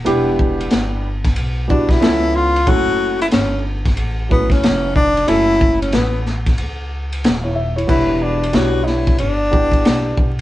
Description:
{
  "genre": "hip hop, jazz-hop",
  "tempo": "92 BPM",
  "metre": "4/4",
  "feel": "swing 63% on 16ths",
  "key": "E dorian",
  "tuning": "A4 = 442 Hz",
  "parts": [
    { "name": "dark concert grand piano", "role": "accompaniment", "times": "0.0-10.3 s", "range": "E#3 to E5", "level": "-20 LUFS", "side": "right 2 dB", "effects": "none" },
    { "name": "upright bass", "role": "bass", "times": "0.0-10.4 s", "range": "D#1 to C#2", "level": "-22 LUFS", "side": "equal", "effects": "none" },
    { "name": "crunchy breakbeat drum kit", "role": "drums", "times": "0.1-10.4 s", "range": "crash cymbal, hi-hat, kick drum, ride cymbal, snare drum", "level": "-18 LUFS", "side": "equal", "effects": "none" },
    { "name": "breathy tenor saxophone", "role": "melody", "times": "1.7-10.4 s", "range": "B3 to F#4", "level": "-17 LUFS", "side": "left 2 dB", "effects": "none" }
  ],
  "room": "light reverb",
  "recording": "band playing live in one room, vinyl crackle, nothing above 10.5 kHz",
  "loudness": "-14 LUFS",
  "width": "side -15 dB against mid",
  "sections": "0.0-7.9 A section; 7.9-10.4 B section",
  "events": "tenor saxophone solo 0.0-7.9; break 6.6-7.9",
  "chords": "0.0 Em7; 2.0 C#7alt; 2.7 F#m7; 7.9 Em7"
}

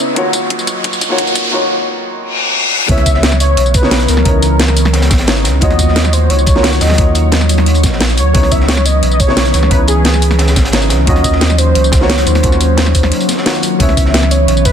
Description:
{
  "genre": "liquid drum and bass",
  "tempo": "176 BPM",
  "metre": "4/4",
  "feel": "straight",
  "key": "C# dorian",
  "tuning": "A4 = 439 Hz",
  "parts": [
    { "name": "felt-muted upright piano", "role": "accompaniment", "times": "0.0-14.7 s", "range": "C#3 to C#5", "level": "-18 LUFS", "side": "left 2 dB", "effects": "digital delay" },
    { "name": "glassy FM pad", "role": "sustained chords", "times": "0.0-14.7 s", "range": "E3 to E6", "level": "-20 LUFS", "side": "left 1 dB", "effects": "ensemble chorus, built-in reverb, tremolo, sidechain pumping" },
    { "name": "warm sub bass", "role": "bass", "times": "0.0-14.7 s", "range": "G#1 to D#2", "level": "-13 LUFS", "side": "equal", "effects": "high-pass filter" },
    { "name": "riser and reverse cymbal", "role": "sound effects", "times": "0.0-2.9 s", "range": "none", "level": "-17 LUFS", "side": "left 2 dB", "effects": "none" },
    { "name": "electronic kick drum", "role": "drums", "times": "0.2-14.7 s", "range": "none", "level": "-14 LUFS", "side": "equal", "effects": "high-pass filter on kick" },
    { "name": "garage drum kit", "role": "drums", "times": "0.2-14.7 s", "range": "hi-hat, snare drum, tambourine", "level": "-16 LUFS", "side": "equal", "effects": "high-pass filter on hats, high-pass filter on perc, high-pass filter on snare" },
    { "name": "warm velvety synth lead", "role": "melody", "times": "2.9-14.7 s", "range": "G#4 to E5", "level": "-18 LUFS", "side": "right 1 dB", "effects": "chorus, dub echo" },
    { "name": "crunchy breakbeat drum kit", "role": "drums", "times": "2.9-14.7 s", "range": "hi-hat, snare drum", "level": "-24 LUFS", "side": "right 1 dB", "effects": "high-pass filter on hats, high-pass filter on snare, high-pass filter on room" }
  ],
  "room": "light reverb, small room reverb",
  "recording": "dense, heavily limited modern master, high-pass filter",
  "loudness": "-9 LUFS",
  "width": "side -8 dB against mid",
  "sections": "0.0-2.9 A section; 2.9-14.7 B section",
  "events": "build-up 0.0-2.9; drum fill 0.0-1.5; riser 0.0-1.5; filter sweep 0.0-2.9; reverse cymbal 2.3-2.9; drop 2.9-14.7; break 13.1-13.8",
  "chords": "0.2 D#m7; 2.9 C#m7; 5.6 D#m7; 8.3 C#m7; 11.1 D#m7; 13.8 C#m7"
}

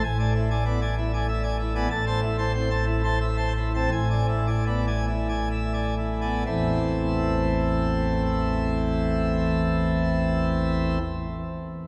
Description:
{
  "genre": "classical, organ toccata",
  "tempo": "59-98 BPM",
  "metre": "3/4",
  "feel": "straight",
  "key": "A minor",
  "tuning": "A4 = 440 Hz",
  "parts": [
    { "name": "pipe organ, plenum", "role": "solo", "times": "0.0-11.0 s", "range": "A1 to A5", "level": "-25 LUFS", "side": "equal", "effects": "none" }
  ],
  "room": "wet cathedral reverb, RT60 4.7 s",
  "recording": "heard from further back in the room, vinyl crackle",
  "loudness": "-25 LUFS",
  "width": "mono",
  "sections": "0.0-6.5 A section; 6.5-11.9 B section",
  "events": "slowing down 1.0-6.5",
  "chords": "0.0 E7/A; 1.9 Am; 3.9 E7/A; 6.5 Am"
}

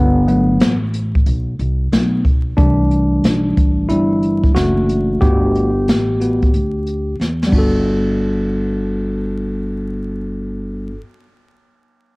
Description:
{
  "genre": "hip hop, jazz-hop",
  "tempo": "91 BPM",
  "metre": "4/4",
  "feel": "swing 66% on 16ths",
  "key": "G major",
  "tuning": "A4 = 436 Hz",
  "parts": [
    { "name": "tine electric piano", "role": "accompaniment", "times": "0.0-11.0 s", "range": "D3 to A4", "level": "-17 LUFS", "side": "equal", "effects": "none" },
    { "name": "upright bass", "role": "bass", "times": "0.0-10.9 s", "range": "F#1 to E2", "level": "-20 LUFS", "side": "equal", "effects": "tube saturation" },
    { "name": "jazz brush drum kit", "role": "drums", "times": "0.3-7.7 s", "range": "hi-hat, kick drum, ride cymbal, snare drum", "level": "-17 LUFS", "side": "equal", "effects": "vintage 12-bit sampler grit, cassette tape" }
  ],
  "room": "light reverb",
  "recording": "home recording on cassette, vinyl crackle",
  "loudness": "-14 LUFS",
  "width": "side -27 dB against mid",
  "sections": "0.0-7.9 A section; 7.9-10.5 B section",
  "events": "tine electric piano solo 0.0-7.9; drum fill 7.2-7.9",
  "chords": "0.0 Gmaj9; 2.6 C69; 5.2 Gmaj9"
}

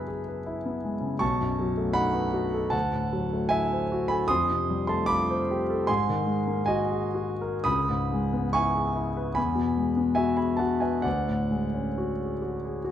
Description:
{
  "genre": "classical, impressionist solo piano",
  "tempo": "59-82 BPM",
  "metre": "4/4",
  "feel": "rubato",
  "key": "unclear",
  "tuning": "A4 = 439 Hz",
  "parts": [
    { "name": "warm concert grand piano", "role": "solo", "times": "0.0-12.9 s", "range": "B1 to B6", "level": "-24 LUFS", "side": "equal", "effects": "none" }
  ],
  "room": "moderate recital hall reverb, RT60 1.5 s",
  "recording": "dark, warm production",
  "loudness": "-24 LUFS",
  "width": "side -10 dB against mid",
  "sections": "0.0-12.9 A section",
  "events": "none",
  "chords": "0.0 F#m11; 1.2 B9; 2.7 D9; 4.3 Fadd9; 5.9 G#9; 7.6 C#m9; 9.4 Eadd9; 11.1 Dmaj7#11"
}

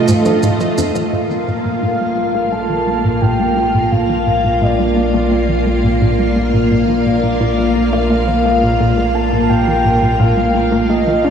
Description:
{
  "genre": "ambient, sequencer-driven space music",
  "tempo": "86 BPM",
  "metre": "4/4",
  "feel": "straight",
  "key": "Bb major",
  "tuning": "A4 = 439 Hz",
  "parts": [
    { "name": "soft octave-layered synth lead", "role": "melody", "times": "0.0-11.3 s", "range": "D5 to A5", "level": "-20 LUFS", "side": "left 1 dB", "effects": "chorus, tape echo" },
    { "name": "string machine, full ensemble", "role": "sustained chords", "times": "0.0-11.3 s", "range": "A3 to F5", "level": "-16 LUFS", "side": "equal", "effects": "ensemble chorus" },
    { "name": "plucky analog bass", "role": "riff", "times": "0.1-11.3 s", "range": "F2 to D4", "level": "-18 LUFS", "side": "equal", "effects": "wide subtle chorus, tape echo" },
    { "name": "shaker and congas", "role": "percussion", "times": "0.1-1.1 s", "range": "none", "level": "-27 LUFS", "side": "equal", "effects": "tape echo" },
    { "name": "analog drone", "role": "bass", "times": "2.7-11.3 s", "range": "Bb1", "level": "-21 LUFS", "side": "equal", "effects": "chorus" }
  ],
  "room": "wet huge ambient reverb, RT60 8.3 s",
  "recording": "played on a big sound system in a bare room, large studio reverb",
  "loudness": "-12 LUFS",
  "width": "side -7 dB against mid",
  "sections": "0.0-1.1 A section; 1.1-11.3 B section",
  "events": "none",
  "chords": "0.0 F7; 1.1 Bb"
}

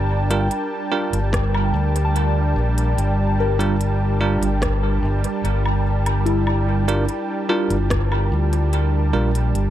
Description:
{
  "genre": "ambient dub",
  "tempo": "73 BPM",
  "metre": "4/4",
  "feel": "straight",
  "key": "G dorian",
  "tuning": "A4 = 441 Hz",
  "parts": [
    { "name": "warm analog pad", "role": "sustained chords", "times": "0.0-9.7 s", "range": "G3 to A5", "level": "-25 LUFS", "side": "right 3 dB", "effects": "chorus" },
    { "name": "soft synth bell", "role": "arpeggios", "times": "0.0-9.7 s", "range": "E4 to A5", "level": "-29 LUFS", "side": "left 5 dB", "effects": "chorus, dub echo" },
    { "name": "overdriven fingered electric bass", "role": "bass", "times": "0.0-9.7 s", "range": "G1 to D2", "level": "-19 LUFS", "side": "equal", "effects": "none" },
    { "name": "bell-like tine electric piano", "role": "stabs", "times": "0.3-9.3 s", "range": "G3 to Bb4", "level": "-26 LUFS", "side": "right 3 dB", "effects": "fast stereo tremolo, dub echo" },
    { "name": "organic electronic drum kit", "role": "drums", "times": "0.3-9.7 s", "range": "hi-hat, rim click, woodblock", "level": "-29 LUFS", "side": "equal", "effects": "dub echo" },
    { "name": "electronic kick drum", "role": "drums", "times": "1.3-8.1 s", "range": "none", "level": "-26 LUFS", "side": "equal", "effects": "none" }
  ],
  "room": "little or no reverb",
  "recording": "echo-heavy mix",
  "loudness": "-18 LUFS",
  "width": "side -12 dB against mid",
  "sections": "0.0-9.7 A section",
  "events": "none",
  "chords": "0.0 Gm7"
}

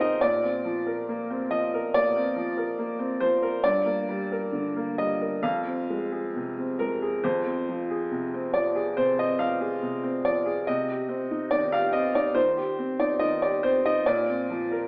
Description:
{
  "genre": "neoclassical minimalist piano",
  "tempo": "70 BPM",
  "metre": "4/4",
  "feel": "rubato",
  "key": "F dorian",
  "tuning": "A4 = 437 Hz",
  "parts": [
    { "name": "clear upright piano", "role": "solo", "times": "0.0-14.9 s", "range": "F2 to F5", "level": "-23 LUFS", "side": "equal", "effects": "none" }
  ],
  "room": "wet recital hall reverb, RT60 1.4 s",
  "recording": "recorded in a church or concert hall, AM radio sound",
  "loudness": "-23 LUFS",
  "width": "side -31 dB against mid",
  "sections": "0.0-7.2 A section; 7.2-14.9 A section",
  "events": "none",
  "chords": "0.2 Bbadd9; 3.6 Gm; 5.4 Fm; 10.7 Cm; 14.1 Bbadd9"
}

